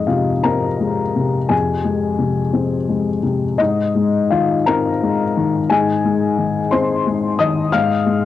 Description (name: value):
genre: neoclassical minimalist piano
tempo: 58 BPM (dotted quarters)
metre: 6/8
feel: uneven beats, rubato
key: unclear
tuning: A4 = 440 Hz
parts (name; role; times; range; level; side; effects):
- warm upright piano; solo; 0.0-8.2 s; F2 to F6; -15 LUFS; left 4 dB; cassette tape
room: moderate small room reverb, RT60 0.5 s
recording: home recording on cassette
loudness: -15 LUFS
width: side -12 dB against mid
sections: 0.0-8.2 A section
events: none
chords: 0.0 Fm; 3.6 Ab